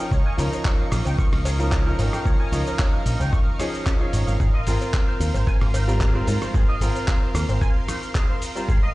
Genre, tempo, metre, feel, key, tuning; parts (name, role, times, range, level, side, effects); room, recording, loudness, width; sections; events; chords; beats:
nu-disco, nu disco; 112 BPM; 4/4; swing 53% on 16ths; Ab major; A4 = 436 Hz
bright concert grand piano; accompaniment; 0.0-8.7 s; F3 to Db5; -29 LUFS; equal; digital delay
lush unison pad; sustained chords; 0.0-8.9 s; Bb4 to Db6; -33 LUFS; equal; chorus, sidechain pumping
electric guitar with an envelope filter; riff; 0.0-8.9 s; Db4 to Db6; -34 LUFS; right 2 dB; ensemble chorus, low-pass filter, digital delay
picked electric bass with an envelope filter; bass; 0.1-8.8 s; Ab1 to Ab2; -22 LUFS; equal; tube saturation
dusty soul sampler-style drum kit; drums; 0.1-8.8 s; cabasa, handclaps, hi-hat, rim click; -32 LUFS; equal
electronic kick drum; drums; 0.1-8.8 s; -21 LUFS; equal
cowbell; percussion; 0.5-7.6 s; -37 LUFS; left 1 dB
little or no reverb; played on a big sound system in a bare room, large studio reverb, nothing above 10.5 kHz; -19 LUFS; side -19 dB against mid
0.0-8.9 A section
0.0 Db69; 4.4 Ab69
| 0.12 0.65 1.19 1.72 | 2.26 2.79 3.33 3.87 | 4.40 4.94 5.47 6.01 | 6.54 7.08 7.62 8.15 | 8.69